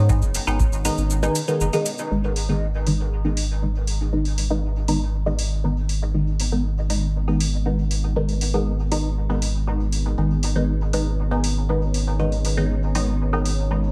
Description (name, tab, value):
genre	dub techno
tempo	119 BPM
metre	4/4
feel	straight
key	G# minor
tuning	A4 = 436 Hz
part	deep dark ambient pad	sustained chords	0.0-13.9 s	B3 to D#5	-36 LUFS	equal	chorus, built-in reverb, sidechain pumping
part	round analog bass	bass	0.0-13.9 s	F#1 to G#2	-25 LUFS	equal	sidechain pumping
part	filtered dub chord stab	stabs	0.1-13.9 s	D#3 to D#4	-27 LUFS	equal	phaser, sidechain pumping, dub echo
part	electronic kick drum	drums	0.1-0.7 s	none	-23 LUFS	equal	none
part	electronic shaker and hi-hat	drums	0.1-13.6 s	none	-32 LUFS	equal	none
room	light reverb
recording	echo-heavy mix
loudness	-22 LUFS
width	mono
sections	0.0-2.1 A section; 2.1-13.9 B section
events	kick drops out 1.1-2.1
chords	0.0 G#m